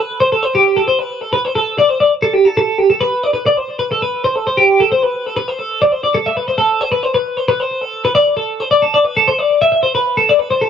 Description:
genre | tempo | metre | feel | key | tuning
rock | 268 BPM (eighths) | 9/8 | straight | unclear | A4 = 440 Hz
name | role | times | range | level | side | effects
twelve-string electric guitar | solo | 0.0-10.7 s | G4 to E5 | -12 LUFS | equal | lush chorus
room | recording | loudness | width
light reverb | dark, warm production | -12 LUFS | side -8 dB against mid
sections
0.0-6.1 A section; 6.1-10.7 B section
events
none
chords
none

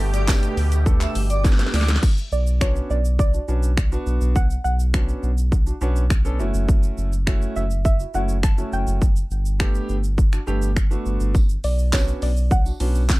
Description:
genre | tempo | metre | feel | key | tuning
dance-pop | 103 BPM | 4/4 | straight | B minor | A4 = 440 Hz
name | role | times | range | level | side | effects
filtered supersaw swell | sustained chords | 0.0-2.0 s | B2 to G4 | -31 LUFS | right 1 dB | sidechain pumping
round analog bass | bass | 0.0-13.2 s | F#1 to D2 | -21 LUFS | equal | sidechain pumping
airy dreamy lead | melody | 0.1-1.9 s | D5 to E5 | -31 LUFS | right 1 dB | chorus, phaser, tape echo
house drum kit | drums | 0.1-13.2 s | crash cymbal, finger snaps, handclaps, hi-hat, kick drum, shaker, snare drum | -20 LUFS | equal | none
tambourine | percussion | 0.1-2.0, 11.3-13.2 s | none | -43 LUFS | right 3 dB | none
clear baby grand piano | accompaniment | 0.3-13.0 s | A3 to A4 | -29 LUFS | right 1 dB | sidechain pumping
soft round pluck | melody | 2.3-13.2 s | C#5 to A5 | -28 LUFS | right 2 dB | chorus
room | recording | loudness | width
little or no reverb | dark, warm production | -18 LUFS | side -20 dB against mid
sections
0.0-2.0 A section; 2.0-13.2 B section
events
drum fill 1.4-2.0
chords
0.0 Gadd9; 2.0 Bmadd9; 6.4 F#m7; 9.0 Gadd9; 11.3 Bmadd9

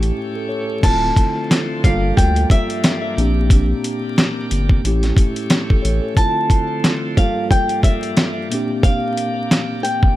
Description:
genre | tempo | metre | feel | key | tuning
hip hop, boom-bap hip-hop | 90 BPM | 4/4 | swing 57% on 16ths | D minor | A4 = 439 Hz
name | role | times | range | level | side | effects
mellow tine electric piano | accompaniment | 0.0-10.2 s | G2 to C#5 | -22 LUFS | equal | medium stereo tremolo, cassette tape, high-pass filter, low-pass filter
bright tonewheel organ | sustained chords | 0.0-10.2 s | D3 to G4 | -30 LUFS | equal | overdrive, slow rotary speaker, high-pass filter, low-pass filter
saturated sub bass | bass | 0.0-6.0 s | D1 to D2 | -18 LUFS | equal | none
dusty soul sampler-style drum kit | drums | 0.0-10.2 s | crash cymbal, hi-hat, kick drum, snare drum | -15 LUFS | equal | none
flamenco guitar | melody | 0.8-10.2 s | E5 to A5 | -22 LUFS | equal | high-pass filter, low-pass filter, ping-pong delay
room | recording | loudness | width
little or no reverb | vinyl crackle | -15 LUFS | side -15 dB against mid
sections
0.8-10.2 A section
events
break 0.2-0.8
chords
0.0 A7; 0.8 Dm7; 1.8 Gm7; 3.2 Bb6; 4.8 A7; 6.2 Dm7; 7.2 Gm7; 8.5 Bb6

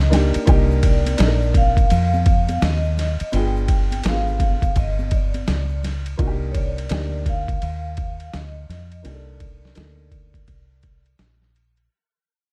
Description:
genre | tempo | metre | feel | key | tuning
hip hop, jazz-hop | 84 BPM | 4/4 | swing 64% on 16ths | unclear | A4 = 439 Hz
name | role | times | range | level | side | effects
vibraphone with hard mallets | melody | 0.0-11.2 s | Db5 to G5 | -30 LUFS | equal | low-pass filter
deep dub fingered electric bass | bass | 0.0-11.9 s | G1 to F2 | -24 LUFS | equal | none
dark upright piano | accompaniment | 0.1-11.1 s | D3 to Bb4 | -28 LUFS | equal | low-pass filter
boom bap sampler-style drum kit | drums | 0.1-11.9 s | hi-hat, kick drum, ride cymbal, snare drum | -23 LUFS | equal | none
congas and egg shaker | percussion | 0.1-6.2 s | none | -35 LUFS | equal | none
room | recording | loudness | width
small room ambience | vinyl crackle | -20 LUFS | mono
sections
0.5-11.9 A section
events
break 0.0-0.5; fade-out 0.5-11.9; filter sweep 0.5-11.9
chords
0.5 Cm9; 3.3 G7b9; 6.2 Cm9

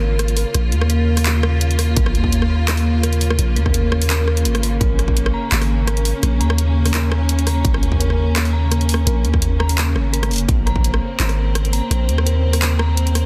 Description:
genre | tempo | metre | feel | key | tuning
half-time drum and bass | 169 BPM | 4/4 | half-time | Bb minor | A4 = 441 Hz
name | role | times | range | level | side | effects
clear symphonic string section | sustained chords | 0.0-13.3 s | Db3 to F4 | -27 LUFS | equal | sidechain pumping
dark detuned synth bell | arpeggios | 0.0-13.3 s | Bb4 to Bb5 | -31 LUFS | equal | chorus, phaser, vintage 12-bit sampler grit, tape echo
long sustained 808-style bass | bass | 0.0-13.3 s | F1 to Eb2 | -19 LUFS | equal | none
drum and bass drum kit | drums | 0.2-13.2 s | handclaps, hi-hat, rim click | -25 LUFS | equal | overdrive
electronic kick drum | drums | 2.0-5.1, 7.6-10.8 s | none | -22 LUFS | equal | distortion
room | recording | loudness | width
light reverb, digital ambience | dense, heavily limited modern master | -18 LUFS | mono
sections
0.0-13.3 A section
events
none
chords
0.0 Bbmadd9

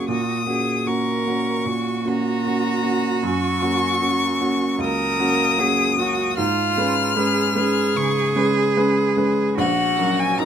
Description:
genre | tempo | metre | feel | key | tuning
classical, slow romantic movement for piano trio | 76 BPM | 4/4 | rubato | F# major | A4 = 440 Hz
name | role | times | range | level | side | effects
rich violin | melody | 0.0-10.4 s | F#5 to E#6 | -23 LUFS | left 6 dB | none
rich cello | second line | 0.0-10.4 s | D#4 to A#4 | -24 LUFS | right 4 dB | none
warm baby grand piano | accompaniment | 0.0-10.4 s | A#1 to B4 | -21 LUFS | right 1 dB | none
room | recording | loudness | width
light reverb | close, detailed microphones | -18 LUFS | side -8 dB against mid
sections
0.0-10.4 A section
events
none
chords
0.1 F#/A#; 3.2 F#; 6.4 C#7/G#; 9.6 F#/A#

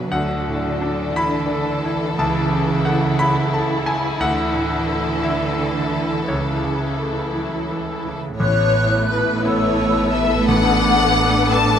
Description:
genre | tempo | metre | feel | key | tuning
cinematic, emotional film score for orchestra | 58 BPM (dotted quarters) | 6/8 | rubato | A major from 8.4 s | A4 = 440 Hz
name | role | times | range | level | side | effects
warm symphonic violin section | melody | 0.0-11.8 s | A4 to A5 | -24 LUFS | left 5 dB | none
warm symphonic violin section | second line | 0.0-11.8 s | D4 to B4 | -26 LUFS | left 2 dB | none
bright concert grand piano | accompaniment | 0.0-11.8 s | A1 to B5 | -22 LUFS | left 1 dB | none
warm symphonic viola section | accompaniment | 0.0-11.8 s | E3 to E4 | -26 LUFS | right 2 dB | none
rich symphonic cello section | bass | 0.0-11.8 s | A2 to F#3 | -25 LUFS | right 4 dB | none
bright flute section | second line | 8.4-11.8 s | D6 to F#6 | -23 LUFS | right 3 dB | none
mellow French horn section | sustained chords | 8.4-11.8 s | B3 to E4 | -24 LUFS | left 2 dB | none
rich symphonic double bass section | bass | 8.4-11.8 s | A1 | -25 LUFS | right 2 dB | none
room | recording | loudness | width
moderate scoring stage reverb, RT60 1.5 s | close, detailed microphones | -17 LUFS | side -8 dB against mid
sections
0.0-8.4 A section; 8.4-11.8 B section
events
none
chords
0.1 Dadd9; 2.2 A/C#; 4.2 Dadd9; 6.3 A/C#; 8.4 Aadd9; 10.5 D6/A

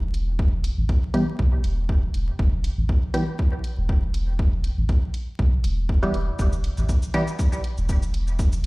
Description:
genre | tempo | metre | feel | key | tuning
dub techno | 120 BPM | 4/4 | swing 54% on 16ths | E minor | A4 = 436 Hz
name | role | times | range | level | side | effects
warm sub bass | bass | 0.0-8.7 s | E1 to B1 | -24 LUFS | equal | tube saturation, sidechain pumping
electronic hi-hat and shaker | drums | 0.1-8.7 s | none | -41 LUFS | right 1 dB | studio reverb
electronic kick drum | drums | 0.4-8.5 s | none | -22 LUFS | equal | studio reverb
filtered dub chord stab | stabs | 1.1-7.2 s | E3 to G4 | -26 LUFS | equal | chorus, phaser, sidechain pumping, dub echo
room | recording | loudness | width
little or no reverb | played on a big sound system in a bare room, large studio reverb, vinyl crackle | -20 LUFS | side -24 dB against mid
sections
0.0-8.7 A section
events
none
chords
none

